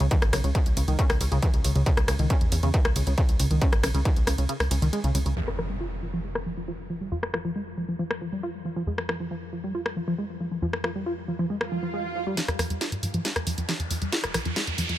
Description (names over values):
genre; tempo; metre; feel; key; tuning
driving peak-time techno; 137 BPM; 4/4; straight; F harmonic minor; A4 = 437 Hz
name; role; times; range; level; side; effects
tight sequenced synth; riff; 0.0-15.0 s; Db3 to F4; -30 LUFS; equal; chorus, tube saturation, sidechain pumping, ping-pong delay
tight sequencer bass; bass; 0.0-15.0 s; F1 to Ab2; -29 LUFS; equal; sidechain pumping
techno drum kit; drums; 0.0-15.0 s; crash cymbal, hi-hat, ride cymbal, rim click, snare drum; -30 LUFS; left 1 dB; overdrive, high-pass filter on hats, low-pass filter on hats, high-pass filter on snare, low-pass filter on snare, high-pass filter on cymbals, low-pass filter on cymbals
electronic kick drum; drums; 0.1-4.1 s; none; -23 LUFS; equal; distortion, overdrive
impact, swell and riser; sound effects; 5.4-7.1, 11.6-15.0 s; none; -35 LUFS; right 2 dB; none
room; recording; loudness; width
light reverb; none; -24 LUFS; side -14 dB against mid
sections
0.0-5.4 A section; 5.4-12.4 B section; 12.4-15.0 C section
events
drop 0.0-5.4; kick drops out 4.5-5.4; impact 5.4-7.1; filter sweep on drum 5.4-12.4; swell 11.6-12.4; build-up 12.4-15.0; drum fill 12.4-15.0; riser 12.4-15.0; filter sweep on synth arpeggio sound 12.4-15.0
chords
0.0 Dbm; 5.4 N.C.; 12.4 Fm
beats
| 0.11 0.55 0.99 1.43 | 1.86 2.30 2.74 3.18 | 3.62 4.05 4.49 4.93 | 5.37 5.80 6.24 6.68 | 7.12 7.56 8.00 8.43 | 8.87 9.31 9.75 10.18 | 10.62 11.06 11.50 11.94 | 12.37 12.81 13.25 13.69 | 14.13 14.56